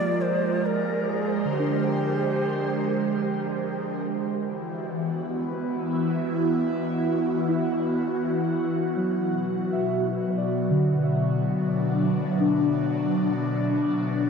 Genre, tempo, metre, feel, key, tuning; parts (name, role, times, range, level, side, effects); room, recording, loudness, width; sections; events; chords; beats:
ambient; 69 BPM; 3/4; straight; A4 = 440 Hz
long shakuhachi; melody; 0.0-3.6 s; G4 to D5; -30 LUFS; left 1 dB; diffuse ambient delay
airy breathy pad; sustained chords; 0.0-14.3 s; B2 to C5; -25 LUFS; equal; chorus, phaser
muted felt-like synth keys; arpeggios; 0.0-14.3 s; D3 to G5; -28 LUFS; equal; chorus, diffuse ambient delay
wet huge ambient reverb, RT60 7.5 s; cassette tape; -23 LUFS; side -6 dB against mid
0.0-4.1 A section; 4.1-14.3 B section
0.0 Abmaj7; 4.1 E5; 9.3 Bm
0.62 | 1.49 2.36 3.23 | 4.10 4.97 5.84 | 6.71 7.58 8.45 | 9.32 10.19 11.06 | 11.93 12.79 13.66